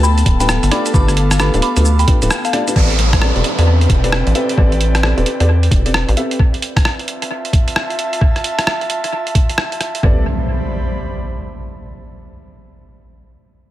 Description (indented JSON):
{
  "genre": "UK garage, two-step garage",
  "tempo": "132 BPM",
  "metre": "4/4",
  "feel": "swing 63% on 16ths",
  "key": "A minor",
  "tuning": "A4 = 442 Hz",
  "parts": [
    { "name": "soft synth bell", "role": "melody", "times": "0.0-2.7 s", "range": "F5 to D6", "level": "-22 LUFS", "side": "left 1 dB", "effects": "chorus, phaser, dub echo" },
    { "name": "warm chamber violin section", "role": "sustained chords", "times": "0.0-2.8 s", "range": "A5", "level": "-31 LUFS", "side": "left 4 dB", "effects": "sidechain pumping" },
    { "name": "rubbery square bass", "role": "bass", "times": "0.0-6.2, 10.0-10.2 s", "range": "D1 to E2", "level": "-14 LUFS", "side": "equal", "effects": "none" },
    { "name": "boom bap sampler-style drum kit", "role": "drums", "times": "0.0-10.0 s", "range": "crash cymbal, hi-hat, rim click, shaker", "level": "-20 LUFS", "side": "right 1 dB", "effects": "studio reverb, analog delay" },
    { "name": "airy breathy pad", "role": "texture", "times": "0.0-11.8 s", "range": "B3 to B5", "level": "-24 LUFS", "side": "equal", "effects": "chorus, sidechain pumping" },
    { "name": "electronic kick drum", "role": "drums", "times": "0.3-10.1 s", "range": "none", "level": "-14 LUFS", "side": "equal", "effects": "studio reverb" },
    { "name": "dark baby grand piano", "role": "stabs", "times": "0.4-6.4, 10.0-10.2 s", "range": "A3 to E5", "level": "-22 LUFS", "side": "left 1 dB", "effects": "dub echo" },
    { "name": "downlifter and impact", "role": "sound effects", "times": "2.8-6.4, 10.0-11.8 s", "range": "none", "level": "-23 LUFS", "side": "equal", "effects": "none" }
  ],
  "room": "light reverb",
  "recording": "echo-heavy mix",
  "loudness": "-13 LUFS",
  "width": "side -14 dB against mid",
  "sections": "0.0-2.8 A section; 2.8-10.0 B section; 10.0-11.8 C section",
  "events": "drop 0.0-2.8; break 2.3-2.8; band accent 2.3",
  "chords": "0.0 G9; 2.8 Am11; 6.4 Fmaj7; 10.0 Am11",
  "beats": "0.03 0.49 | 0.94 1.40 1.85 2.31 | 2.76 3.21 3.67 4.12 | 4.58 5.03 5.49 5.94 | 6.40 6.85 7.30 7.76 | 8.21 8.67 9.12 9.58 | 10.03 10.49 10.94 11.40"
}